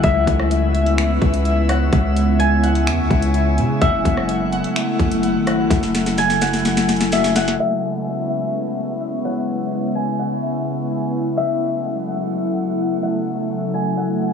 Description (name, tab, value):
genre	hip hop, atmospheric cloud-rap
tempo	127 BPM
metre	4/4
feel	half-time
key	C# minor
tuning	A4 = 442 Hz
part	concert harp	melody	0.0-14.3 s	E5 to G#5	-24 LUFS	left 2 dB	low-pass filter, diffuse ambient delay
part	glassy FM pad	sustained chords	0.0-14.3 s	C#3 to E4	-21 LUFS	left 1 dB	ensemble chorus, built-in reverb, sidechain pumping
part	warbly lo-fi synth keys	arpeggios	0.0-14.3 s	E4 to F#5	-30 LUFS	equal	chorus, low-pass filter, diffuse ambient delay
part	long sustained 808-style bass	bass	0.0-7.6 s	F#1 to C#3	-20 LUFS	left 1 dB	none
part	trap drum kit	drums	0.0-7.6 s	finger snaps, hi-hat, kick drum, rim click, snare drum	-22 LUFS	left 1 dB	vintage 12-bit sampler grit
part	drifting glass-harmonics texture	texture	0.0-14.3 s	C#4 to G#5	-30 LUFS	left 1 dB	chorus, built-in reverb
room	wet huge ambient reverb, RT60 8.4 s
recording	dreamy mix soaked in reverb, low-pass filter, small room ambience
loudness	-17 LUFS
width	side -7 dB against mid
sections	0.0-7.6 A section; 7.6-14.3 B section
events	drum fill 5.7-7.6; filter sweep 7.6-14.3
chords	0.0 C#m7; 3.8 F#m7; 7.6 C#m7; 11.4 F#m7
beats	| 0.04 0.51 0.98 1.45 | 1.92 2.40 2.87 3.34 | 3.81 4.29 4.76 5.23 | 5.70 6.18 6.65 7.12 | 7.59 8.07 8.54 9.01 | 9.48 9.96 10.43 10.90 | 11.37 11.85 12.32 12.79 | 13.26 13.73 14.21